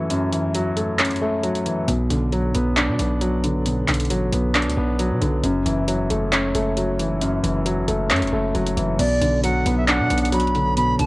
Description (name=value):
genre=hip hop, trap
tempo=135 BPM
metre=4/4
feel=half-time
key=B minor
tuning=A4 = 436 Hz
part: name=dark concert grand piano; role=accompaniment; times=0.0-11.1 s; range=F#2 to D4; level=-21 LUFS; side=equal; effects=cassette tape
part: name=trap drum kit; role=drums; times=0.1-11.1 s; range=crash cymbal, handclaps, hi-hat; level=-24 LUFS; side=equal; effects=cassette tape
part: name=hard-hitting 808-style bass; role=bass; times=1.9-11.1 s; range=F#1 to B2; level=-24 LUFS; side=equal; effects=none
part: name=bright reedy concert flute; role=melody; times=9.0-11.1 s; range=D5 to B5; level=-22 LUFS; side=right 1 dB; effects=cassette tape
room=light reverb, small room ambience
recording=home recording on cassette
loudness=-18 LUFS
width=side -21 dB against mid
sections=0.0-9.0 A section; 9.0-11.1 B section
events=break 0.0-1.9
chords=0.0 F#m7; 1.9 Bm; 5.4 F#m7; 9.0 Bm